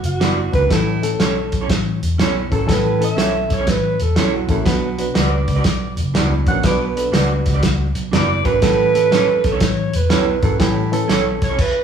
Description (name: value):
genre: uptempo 1960s-style soul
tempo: 121 BPM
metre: 4/4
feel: swing 66% on 8ths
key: unclear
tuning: A4 = 440 Hz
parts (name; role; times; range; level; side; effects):
- mellow alto saxophone; melody; 0.0-11.8 s; E4 to F#5; -21 LUFS; right 4 dB; none
- vintage muted picked electric bass; bass; 0.0-11.6 s; E1 to C#2; -21 LUFS; left 1 dB; none
- warm soul drum kit; drums; 0.0-11.7 s; crash cymbal, hi-hat, kick drum, snare drum; -20 LUFS; equal; none
- warm baritone saxophone; riff; 0.2-11.0 s; E2 to B2; -25 LUFS; right 7 dB; none
- electric guitar through a small old amp; stabs; 0.2-11.6 s; C#4 to D5; -24 LUFS; right 4 dB; spring reverb
- barky reed electric piano; accompaniment; 0.5-11.5 s; E3 to C#5; -24 LUFS; left 2 dB; overdrive, fast tremolo
room: moderate large studio reverb, RT60 1.3 s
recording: band playing live in one room, studio reverb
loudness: -15 LUFS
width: side -7 dB against mid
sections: 0.0-11.8 A section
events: alto saxophone solo 0.0-11.8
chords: 0.0 Bm; 0.7 A; 4.7 Bm; 8.6 A